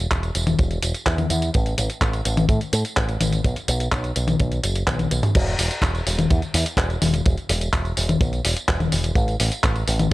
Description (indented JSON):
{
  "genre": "italo disco",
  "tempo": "126 BPM",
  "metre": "4/4",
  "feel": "straight",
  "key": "unclear",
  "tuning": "A4 = 435 Hz",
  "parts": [
    { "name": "picked electric bass with an envelope filter", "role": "bass", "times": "0.0-10.1 s", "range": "E1 to A2", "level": "-23 LUFS", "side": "equal", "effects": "none" },
    { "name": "clean 12-bit digital drum machine", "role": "drums", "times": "0.1-10.1 s", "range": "crash cymbal, handclaps, hi-hat, tambourine, toms", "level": "-23 LUFS", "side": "left 1 dB", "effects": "none" },
    { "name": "kick drum", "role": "drums", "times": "0.1-9.7 s", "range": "none", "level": "-21 LUFS", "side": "equal", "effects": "none" }
  ],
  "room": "little or no reverb",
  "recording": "dry, gritty hardware recording",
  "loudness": "-19 LUFS",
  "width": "side -18 dB against mid",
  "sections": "0.0-5.3 A section; 5.3-10.1 B section",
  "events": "drum fill 4.9-5.3",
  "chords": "none"
}